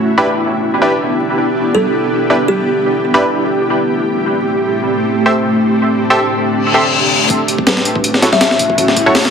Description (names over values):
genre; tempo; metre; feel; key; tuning
drum and bass, jungle; 162 BPM; 4/4; swing 55% on 16ths; F# phrygian; A4 = 440 Hz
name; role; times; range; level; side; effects
ethereal airy pad; sustained chords; 0.0-9.3 s; A3 to G4; -15 LUFS; equal; ensemble chorus, built-in reverb, tremolo
band-passed chord stab; stabs; 0.2-9.2 s; D4 to E5; -16 LUFS; equal; chorus, dub echo
kalimba; melody; 1.7-2.8, 7.7-8.8 s; G4 to E5; -18 LUFS; left 1 dB; dub echo
reverse cymbal and riser; sound effects; 6.6-9.3 s; none; -18 LUFS; left 5 dB; none
breakbeat sampler-style drum kit; drums; 7.3-9.3 s; hi-hat, kick drum, snare drum; -13 LUFS; equal; high-pass filter on kick, small room ambience, high-pass filter on hats, high-pass filter on snare
room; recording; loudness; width
wet plate reverb, RT60 1.8 s; heavily compressed radio sound, multiband compression, vinyl crackle; -11 LUFS; side -6 dB against mid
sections
0.0-7.3 A section; 7.3-9.3 B section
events
reverse cymbal 6.6-7.3; build-up 7.3-9.3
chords
0.0 Em7; 3.6 Am7; 7.3 F#m7